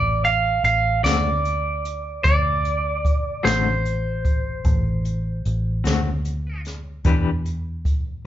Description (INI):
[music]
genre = slow blues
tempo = 50 BPM (dotted quarters)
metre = 12/8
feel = straight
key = unclear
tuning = A4 = 439 Hz
[part]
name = electric guitar at the edge of break-up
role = melody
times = 0.0-6.6 s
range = C5 to F5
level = -22 LUFS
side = right 2 dB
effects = none
[part]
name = vintage muted fingered electric bass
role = bass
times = 0.0-8.2 s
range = A1 to E2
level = -24 LUFS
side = equal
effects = none
[part]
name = jazz brush drum kit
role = drums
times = 0.2-8.0 s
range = hi-hat, kick drum, snare drum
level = -23 LUFS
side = equal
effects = none
[part]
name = clean electric guitar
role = accompaniment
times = 1.0-7.3 s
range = D3 to B4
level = -25 LUFS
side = left 7 dB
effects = tremolo
[sound]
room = light reverb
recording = band playing live in one room, nothing above 7.5 kHz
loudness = -19 LUFS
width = side -12 dB against mid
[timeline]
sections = 0.0-8.3 A section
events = none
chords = 0.0 D7(no3); 7.0 Em7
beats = 1.04 | 2.24 3.44 4.64 5.84 | 7.05